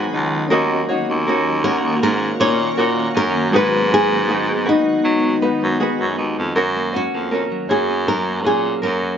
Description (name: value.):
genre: pop.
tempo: 79 BPM.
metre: 4/4.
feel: swing 55% on 16ths.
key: unclear.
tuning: A4 = 438 Hz.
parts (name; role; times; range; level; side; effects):
barky reed electric piano; accompaniment; 0.0-6.6 s; Ab3 to Eb5; -27 LUFS; left 2 dB; overdrive, fast tremolo.
ukulele; accompaniment; 0.0-9.2 s; Db4 to Db5; -24 LUFS; left 1 dB; none.
shimmering ambient pad; sustained chords; 0.0-6.5 s; Eb3 to Gb4; -26 LUFS; equal; chorus, built-in reverb.
direct-recorded clean electric guitar; arpeggios; 0.0-9.2 s; Eb3 to Gb4; -26 LUFS; right 5 dB; none.
clear baritone saxophone; bass; 0.0-9.1 s; Db2 to Gb3; -21 LUFS; right 1 dB; none.
flamenco guitar; melody; 1.6-9.2 s; Eb4 to Db5; -20 LUFS; left 1 dB; tape echo.
room: light reverb.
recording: nothing above 7.5 kHz.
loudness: -16 LUFS.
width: side -8 dB against mid.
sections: 0.0-6.6 A section; 6.6-9.2 B section.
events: none.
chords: 0.0 Abm7; 0.5 Ebm7; 3.5 Abm7; 6.6 Gb.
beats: | 0.51 1.27 2.02 2.78 | 3.53 4.29 5.04 5.80 | 6.55 7.31 8.07 8.82.